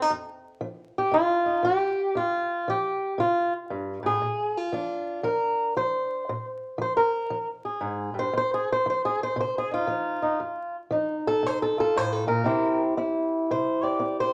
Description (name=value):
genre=acoustic country blues, solo or duo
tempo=116 BPM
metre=4/4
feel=swing 64% on 8ths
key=unclear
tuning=A4 = 435 Hz
part: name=fingerpicked swing-style acoustic guitar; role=solo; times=0.0-14.3 s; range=F2 to D5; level=-26 LUFS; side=equal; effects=none
room=moderate large studio reverb, RT60 0.9 s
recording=vinyl crackle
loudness=-26 LUFS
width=mono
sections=0.0-14.3 A section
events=steel-string acoustic guitar solo 0.0-14.3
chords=0.0 F5; 4.2 Bb7; 8.3 F7; 12.5 C7